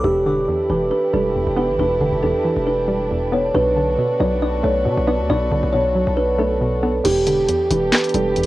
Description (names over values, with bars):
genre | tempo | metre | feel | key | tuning
hip hop, trap | 137 BPM | 4/4 | half-time | unclear | A4 = 441 Hz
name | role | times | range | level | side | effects
kalimba | melody | 0.0-8.5 s | G4 to D5 | -18 LUFS | right 1 dB | low-pass filter, cassette tape
hollow square pluck | accompaniment | 0.0-8.5 s | E2 to B3 | -24 LUFS | equal | chorus, low-pass filter
dark studio string section | sustained chords | 0.0-8.5 s | E3 to A4 | -28 LUFS | equal | none
distorted 808-style bass | bass | 0.0-8.5 s | E1 to B2 | -24 LUFS | equal | distortion
trap drum kit | drums | 7.0-8.5 s | crash cymbal, handclaps, hi-hat, snare drum | -21 LUFS | equal | cassette tape
room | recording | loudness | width
light reverb | home recording on cassette | -16 LUFS | side -16 dB against mid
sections
0.0-7.0 A section; 7.0-8.5 B section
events
none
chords
0.0 Em7; 3.5 Bm7; 7.0 Em7